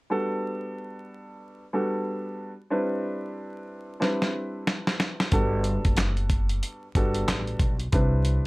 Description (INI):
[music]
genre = hip hop, boom-bap hip-hop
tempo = 92 BPM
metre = 4/4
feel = swing 61% on 16ths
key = G major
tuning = A4 = 444 Hz
[part]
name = dark concert grand piano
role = accompaniment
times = 0.1-8.5 s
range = G3 to B4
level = -29 LUFS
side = equal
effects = cassette tape, high-pass filter, low-pass filter
[part]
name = dusty soul sampler-style drum kit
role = drums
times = 4.0-8.4 s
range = handclaps, hi-hat, kick drum, snare drum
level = -25 LUFS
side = equal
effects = none
[part]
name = upright bass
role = bass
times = 5.3-8.4 s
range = F#1 to C2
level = -26 LUFS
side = equal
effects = transformer saturation
[sound]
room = little or no reverb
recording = dry, gritty hardware recording, vinyl crackle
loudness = -24 LUFS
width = side -23 dB against mid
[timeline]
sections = 0.1-5.3 A section; 5.3-8.5 B section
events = drum fill 4.0-5.3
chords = 0.1 Gmaj9; 2.7 Cmaj9; 5.3 Gmaj9; 7.9 Cmaj9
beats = | 0.10 0.75 1.41 2.06 | 2.71 3.36 4.01 4.67 | 5.32 5.97 6.62 7.28 | 7.93